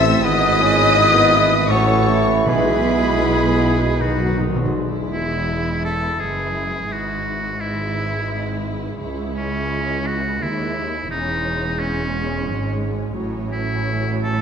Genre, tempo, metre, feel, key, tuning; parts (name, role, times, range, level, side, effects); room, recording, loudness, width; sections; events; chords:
classical, slow romantic movement for symphony orchestra; 77-88 BPM; 3/4; rubato; E major; A4 = 440 Hz
muted studio violin section; melody; 0.0-14.4 s; B4 to E6; -27 LUFS; left 2 dB
bright oboe; second line; 0.0-14.4 s; C#4 to B4; -25 LUFS; equal
muted studio violin section; second line; 0.0-14.4 s; C#4 to E5; -26 LUFS; left 2 dB
silver concert flute; second line; 0.0-4.3 s; B5 to E6; -22 LUFS; left 3 dB
warm clarinet; second line; 0.0-4.4 s; C4 to E4; -27 LUFS; right 1 dB
mellow bassoon; accompaniment; 0.0-4.4 s; G#3 to F#4; -23 LUFS; right 1 dB
muted studio viola section; accompaniment; 0.0-14.4 s; D#3 to A4; -29 LUFS; equal
clear trombone section; sustained chords; 0.0-4.4 s; G#2 to E3; -27 LUFS; right 3 dB
mellow French horn section; sustained chords; 0.0-4.4 s; F#3 to F#4; -27 LUFS; left 3 dB
mellow tuba; bass; 0.0-4.5 s; G#1 to B1; -24 LUFS; right 4 dB
muted studio cello section; bass; 0.0-14.4 s; C#2 to B2; -25 LUFS; right 3 dB
muted studio double bass section; bass; 0.0-14.4 s; E1 to D#2; -27 LUFS; right 1 dB
timpani; percussion; 2.5-4.7 s; B2; -25 LUFS; left 1 dB
wet scoring stage reverb, RT60 1.7 s; -17 LUFS; side -7 dB against mid
0.0-4.8 A section; 4.8-14.4 B section
timpani fill 4.0-4.8
0.3 E/G#; 1.7 A; 2.5 E/B; 4.0 B; 4.8 E; 6.9 E/G#; 9.0 C#m; 11.1 C#m/E; 13.2 F#m7/A